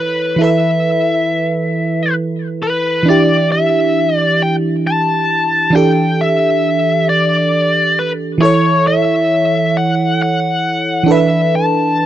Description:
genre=R&B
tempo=45 BPM (dotted quarters)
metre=6/8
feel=straight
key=E dorian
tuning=A4 = 439 Hz
part: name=biting lead guitar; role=melody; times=0.0-12.1 s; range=B4 to A5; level=-15 LUFS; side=left 2 dB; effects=overdrive
part: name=FM electric piano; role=accompaniment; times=0.0-12.1 s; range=E3 to C#5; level=-15 LUFS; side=right 2 dB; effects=chorus
room=light reverb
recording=dry, close 1970s-style studio recording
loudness=-12 LUFS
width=side -12 dB against mid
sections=0.0-3.1 A section; 3.1-12.1 B section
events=none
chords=0.4 Esus4; 3.1 Em7; 5.7 A7sus4/E; 8.4 F#m7/E; 11.1 G6/E (rootless)

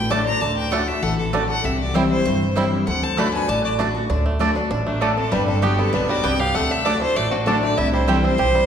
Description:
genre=bluegrass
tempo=196 BPM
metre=4/4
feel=straight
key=D mixolydian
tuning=A4 = 441 Hz
part: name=clear fiddle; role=melody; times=0.0-8.7 s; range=D4 to B5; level=-24 LUFS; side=left 2 dB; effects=none
part: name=lap resonator guitar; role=second line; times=0.0-8.7 s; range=F#3 to D5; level=-27 LUFS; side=left 2 dB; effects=none
part: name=picked steel-string acoustic guitar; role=accompaniment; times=0.0-8.7 s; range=G2 to G4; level=-23 LUFS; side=left 1 dB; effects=none
part: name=upright bass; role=bass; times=0.0-8.6 s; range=G1 to D2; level=-26 LUFS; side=equal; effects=none
part: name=bluegrass banjo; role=melody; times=0.1-8.7 s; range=G3 to G4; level=-26 LUFS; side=right 4 dB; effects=none
part: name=mandolin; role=stabs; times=0.1-8.2 s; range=A3 to A5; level=-27 LUFS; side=right 4 dB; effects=none
room=wet recital hall reverb, RT60 1.8 s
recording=recorded in a church or concert hall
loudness=-18 LUFS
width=side -8 dB against mid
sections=0.0-4.1 A section; 4.1-8.7 A section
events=none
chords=0.0 D; 1.6 C; 2.9 D; 5.3 G; 6.5 D; 7.8 C

